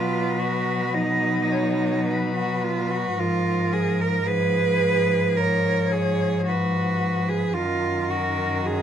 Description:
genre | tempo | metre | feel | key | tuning
classical, lyrical piece for cello ensemble | 54 BPM | 4/4 | rubato | unclear | A4 = 440 Hz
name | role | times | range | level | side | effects
clear cello | melody | 0.0-8.8 s | Gb4 to D#5 | -28 LUFS | left 4 dB | none
rich cello | second line | 0.0-8.8 s | D#4 to Cb5 | -24 LUFS | right 4 dB | none
rich cello | accompaniment | 0.0-8.8 s | Eb3 to F#3 | -26 LUFS | left 2 dB | none
rich cello | bass | 0.0-8.8 s | Gb2 to B2 | -29 LUFS | equal | none
room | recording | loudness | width
light reverb | none | -20 LUFS | side -9 dB against mid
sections
0.0-8.8 A section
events
none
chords
0.0 B; 3.2 Fdim/Ab; 7.6 Ebm/Gb

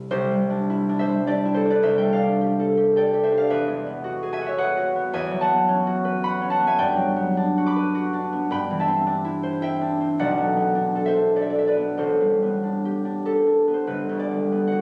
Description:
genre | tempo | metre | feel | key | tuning
classical, solo harp piece | 92-112 BPM | 3/4 | rubato | C major, G major from 6.8 s | A4 = 440 Hz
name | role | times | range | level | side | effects
concert harp | solo | 0.0-14.8 s | G1 to D6 | -22 LUFS | equal | none
room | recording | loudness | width
moderate concert hall reverb, RT60 2.0 s | recorded on a phone in the room, studio reverb | -22 LUFS | mono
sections
0.1-13.9 A section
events
none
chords
0.1 Cadd9; 1.8 G11/C; 3.5 Eadd9; 5.1 B11/E; 6.8 Gmaj7; 8.5 C69/G; 10.2 Bm7; 12.0 Am11; 13.9 Gmaj7

